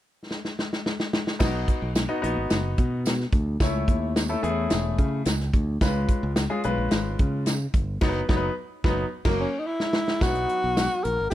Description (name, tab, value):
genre	uptempo 1960s-style soul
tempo	109 BPM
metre	4/4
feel	straight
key	B major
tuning	A4 = 440 Hz
part	natural country drum kit	drums	0.3-11.3 s	crash cymbal, hi-hat, kick drum, snare drum	-24 LUFS	equal	none
part	clear concert grand piano	accompaniment	1.4-11.0 s	F#3 to D#5	-28 LUFS	left 2 dB	none
part	modern bright fingered electric bass	bass	1.4-11.3 s	E1 to C#3	-28 LUFS	equal	none
part	tambourine	percussion	1.4-10.9 s	none	-39 LUFS	right 7 dB	none
part	breathy tenor saxophone	melody	9.4-11.3 s	C#4 to A#4	-25 LUFS	equal	none
room	little or no reverb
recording	dark, warm production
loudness	-22 LUFS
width	side -13 dB against mid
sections	0.0-1.4 A section; 1.4-10.2 B section; 10.2-11.3 C section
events	drum fill 0.3-1.4, 9.1-10.2; band accent 8.0-10.2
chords	0.0 N.C.; 1.4 B; 3.6 A/C#; 5.8 C#7; 8.0 B/F#; 9.1 F#; 10.2 B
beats	0.30 0.85 | 1.41 1.96 2.51 3.06 | 3.61 4.16 4.71 5.26 | 5.81 6.36 6.91 7.46 | 8.02 8.57 9.12 9.67 | 10.22 10.77 11.32